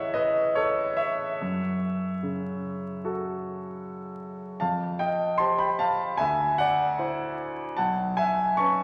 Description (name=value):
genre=classical, impressionist solo piano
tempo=71-78 BPM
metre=4/4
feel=rubato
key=unclear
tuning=A4 = 442 Hz
part: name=clear concert grand piano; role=solo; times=0.0-8.8 s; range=A1 to C#6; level=-27 LUFS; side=equal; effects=none
room=wet concert hall reverb, RT60 1.8 s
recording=vinyl crackle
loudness=-27 LUFS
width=mono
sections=0.0-8.8 A section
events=none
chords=0.0 A6; 1.4 F#m7; 4.6 F9; 6.2 D9; 7.8 Bsus2